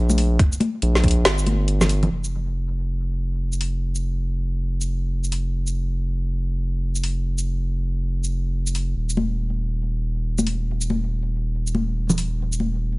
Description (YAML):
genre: deep dubstep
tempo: 140 BPM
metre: 4/4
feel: swing 62% on 16ths, half-time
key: unclear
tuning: A4 = 444 Hz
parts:
  - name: saturated sub bass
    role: bass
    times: 0.0-13.0 s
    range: Eb1 to Bb1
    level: -22 LUFS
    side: equal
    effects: none
  - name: deep house drum kit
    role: drums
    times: 0.1-12.6 s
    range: hi-hat, shaker, snare drum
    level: -24 LUFS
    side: equal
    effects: none
  - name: congas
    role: percussion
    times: 0.1-2.1, 9.2-12.7 s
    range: none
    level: -25 LUFS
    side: left 2 dB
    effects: dub echo
  - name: electronic kick drum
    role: drums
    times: 0.4-1.1 s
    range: none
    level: -18 LUFS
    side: equal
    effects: none
room: little or no reverb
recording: nothing above 11.0 kHz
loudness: -21 LUFS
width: side -24 dB against mid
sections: 0.0-2.1 A section; 2.1-13.0 B section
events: drop 0.0-2.1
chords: none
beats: | 0.39 0.82 1.25 1.68 | 2.11 2.54 2.96 3.39 | 3.82 4.25 4.68 5.11 | 5.54 5.96 6.39 6.82 | 7.25 7.68 8.11 8.54 | 8.96 9.39 9.82 10.25 | 10.68 11.11 11.54 11.96 | 12.39 12.82